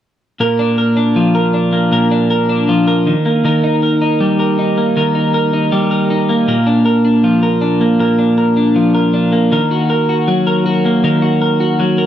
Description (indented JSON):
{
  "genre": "pop",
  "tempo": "79 BPM",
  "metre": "4/4",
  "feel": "straight",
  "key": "Bb major",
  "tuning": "A4 = 438 Hz",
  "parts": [
    { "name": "twelve-string electric guitar", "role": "solo", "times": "0.4-12.1 s", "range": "Bb2 to Bb4", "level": "-11 LUFS", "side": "equal", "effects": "tape echo" }
  ],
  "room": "moderate booth ambience, RT60 0.2 s",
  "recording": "dry, close 1970s-style studio recording",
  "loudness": "-11 LUFS",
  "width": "side -10 dB against mid",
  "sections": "0.4-12.1 A section",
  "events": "none",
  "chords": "0.4 Bb; 3.1 Eb; 6.5 Bb; 9.5 Ebm",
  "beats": "| 0.40 1.16 1.92 2.68 | 3.44 4.20 4.96 5.72 | 6.48 7.24 8.00 8.76 | 9.51 10.27 11.03 11.79"
}